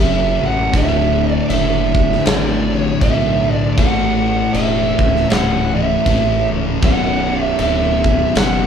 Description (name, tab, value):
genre	stoner and doom metal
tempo	79 BPM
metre	4/4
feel	swing 59% on 8ths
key	B minor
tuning	A4 = 440 Hz
part	fuzz lead guitar	melody	0.0-8.7 s	D5 to F#5	-19 LUFS	right 3 dB	distortion
part	fuzz guitar	riff	0.0-8.7 s	B1 to A3	-22 LUFS	right 5 dB	distortion
part	fuzz guitar	riff	0.0-8.7 s	B1 to A3	-24 LUFS	equal	distortion
part	thick fuzz guitar	riff	0.0-8.7 s	B1 to A3	-21 LUFS	left 7 dB	distortion
part	growling fingered electric bass	bass	0.0-8.7 s	B0 to B1	-22 LUFS	equal	overdrive
part	big rock drum kit	drums	0.7-8.6 s	crash cymbal, kick drum, snare drum	-19 LUFS	equal	none
room	moderate large studio reverb, RT60 1.2 s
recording	band playing live in one room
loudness	-13 LUFS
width	side -8 dB against mid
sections	0.0-8.7 A section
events	none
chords	0.0 F#m; 0.7 D; 3.8 A; 6.8 Bm